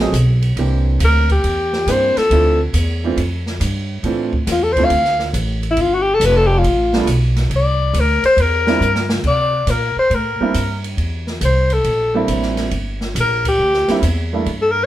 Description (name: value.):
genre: jazz, small-group swing and bop.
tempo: 138 BPM.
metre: 4/4.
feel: swing 68% on 8ths.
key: C mixolydian.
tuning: A4 = 440 Hz.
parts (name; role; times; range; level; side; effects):
warm baby grand piano; accompaniment; 0.0-14.5 s; E3 to Ab4; -20 LUFS; right 4 dB; none.
upright bass; bass; 0.0-14.9 s; F1 to C3; -18 LUFS; equal; none.
open jazz drum kit; drums; 0.1-14.6 s; crash cymbal, hi-hat, kick drum, ride cymbal, snare drum; -25 LUFS; right 1 dB; none.
breathy alto saxophone; melody; 1.0-14.9 s; E4 to F5; -16 LUFS; left 2 dB; none.
room: moderate studio reverb, RT60 0.8 s.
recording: band playing live in one room.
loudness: -14 LUFS.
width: side -13 dB against mid.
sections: 0.0-9.2 A section; 9.2-14.9 A section.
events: alto saxophone solo 0.0-14.9; drum fill 8.8-9.2.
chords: 0.0 F#dim7; 0.6 C9; 2.3 Dm7; 5.8 G9; 7.5 C9.